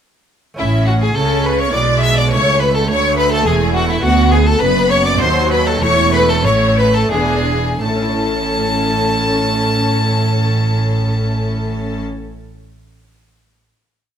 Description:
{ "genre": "classical, baroque-style concerto movement with solo episodes", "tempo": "85-105 BPM", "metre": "3/4", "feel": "straight", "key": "A major", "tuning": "A4 = 441 Hz", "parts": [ { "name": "lute", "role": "accompaniment", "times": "0.5-12.3 s", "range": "D2 to C#5", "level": "-27 LUFS", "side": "equal", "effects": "none" }, { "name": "clear chamber violin section", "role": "melody", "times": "0.6-12.0 s", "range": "E5 to E6", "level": "-23 LUFS", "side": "left 2 dB", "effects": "none" }, { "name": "rich violin", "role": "melody", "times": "0.6-12.0 s", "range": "E4 to A5", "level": "-19 LUFS", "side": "left 2 dB", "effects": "none" }, { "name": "warm studio violin section", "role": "second line", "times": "0.6-12.0 s", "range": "E4 to E5", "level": "-20 LUFS", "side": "left 3 dB", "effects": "none" }, { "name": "rich studio viola section", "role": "accompaniment", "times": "0.6-12.0 s", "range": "F#3 to D4", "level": "-22 LUFS", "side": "right 2 dB", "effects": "none" }, { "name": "rich chamber double bass section", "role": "bass", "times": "0.6-12.0 s", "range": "E1 to D#2", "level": "-20 LUFS", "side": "right 2 dB", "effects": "none" }, { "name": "rich symphonic cello section", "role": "bass", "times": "0.6-12.0 s", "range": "C#2 to C#3", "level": "-19 LUFS", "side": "right 2 dB", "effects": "none" } ], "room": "moderate recital hall reverb, RT60 1.5 s", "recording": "close, detailed microphones", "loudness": "-12 LUFS", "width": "side -8 dB against mid", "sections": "0.6-7.8 ritornello; 7.8-12.0 final chord", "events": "slowing down 3.2-7.8", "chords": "0.6 A; 1.7 E7/B; 2.3 A/C#; 4.0 Bm/D; 5.2 D#dim7; 5.8 A/E; 7.1 E7; 7.8 A" }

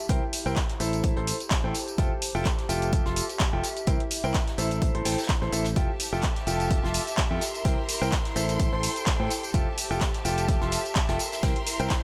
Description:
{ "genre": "piano house", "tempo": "127 BPM", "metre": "4/4", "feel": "swing 55% on 16ths", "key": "F major", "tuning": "A4 = 440 Hz", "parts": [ { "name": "warbly tape-like pad", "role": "texture", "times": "0.0-12.0 s", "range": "E4 to A5", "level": "-40 LUFS", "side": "equal", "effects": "chorus, built-in reverb, sidechain pumping" }, { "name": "clear concert grand piano", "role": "riff", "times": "0.1-11.9 s", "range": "E4 to C6", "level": "-33 LUFS", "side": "equal", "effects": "sidechain pumping, dub echo" }, { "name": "fingered electric bass", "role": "bass", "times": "0.1-11.9 s", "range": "F1 to A2", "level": "-33 LUFS", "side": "equal", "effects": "sidechain pumping" }, { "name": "electronic kick drum", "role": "drums", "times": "0.1-12.0 s", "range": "none", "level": "-29 LUFS", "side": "equal", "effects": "none" }, { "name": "jazz brush drum kit", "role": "drums", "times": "0.1-12.0 s", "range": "hi-hat, snare drum", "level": "-44 LUFS", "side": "equal", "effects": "none" }, { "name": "punchy analog drum machine", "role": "drums", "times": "0.1-12.0 s", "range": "handclaps, hi-hat, tambourine", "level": "-33 LUFS", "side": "equal", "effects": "none" }, { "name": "bright symphonic violin section", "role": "sustained chords", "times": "5.8-12.0 s", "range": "G4 to C6", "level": "-38 LUFS", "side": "equal", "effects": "sidechain pumping" } ], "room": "light reverb, studio reverb", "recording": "none", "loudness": "-26 LUFS", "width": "mono", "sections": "0.0-12.0 A section", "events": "none", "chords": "0.0 C7; 1.0 Am7; 2.0 Fmaj9; 3.6 C7; 4.8 Am7; 5.8 Fmaj9; 7.4 C7; 8.6 Am7; 9.5 Fmaj9; 11.2 C7" }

